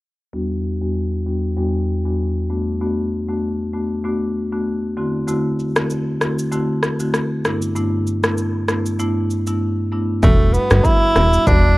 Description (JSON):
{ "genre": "afrobeats", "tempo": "97 BPM", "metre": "4/4", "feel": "swing 55% on 16ths", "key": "unclear", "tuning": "A4 = 441 Hz", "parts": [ { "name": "marimba with medium mallets", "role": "accompaniment", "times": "0.3-11.7 s", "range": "E2 to F#4", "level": "-20 LUFS", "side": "equal", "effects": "low-pass filter" }, { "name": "deep house drum kit", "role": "drums", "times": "5.3-11.6 s", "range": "kick drum, rim click, shaker", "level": "-19 LUFS", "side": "equal", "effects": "none" }, { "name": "breathy tenor saxophone", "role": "melody", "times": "10.2-11.8 s", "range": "A3 to E4", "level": "-16 LUFS", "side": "right 1 dB", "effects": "none" }, { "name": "plucky analog bass", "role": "bass", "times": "10.2-11.8 s", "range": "E1 to G1", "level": "-14 LUFS", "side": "equal", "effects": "none" } ], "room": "light reverb, digital ambience", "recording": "worn, warbling old tape, cassette tape, warbly pitch drift", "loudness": "-17 LUFS", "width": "side -19 dB against mid", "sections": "0.3-10.2 A section; 10.2-11.8 B section", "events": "filter sweep on marimba 0.3-10.2", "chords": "0.3 Em9; 2.5 Bm7; 5.0 D9; 7.4 G6; 10.2 Em9", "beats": "| 0.33 0.95 1.57 2.19 | 2.81 3.43 4.04 4.66 | 5.28 5.90 6.52 7.14 | 7.76 8.38 8.99 9.61 | 10.23 10.85 11.47" }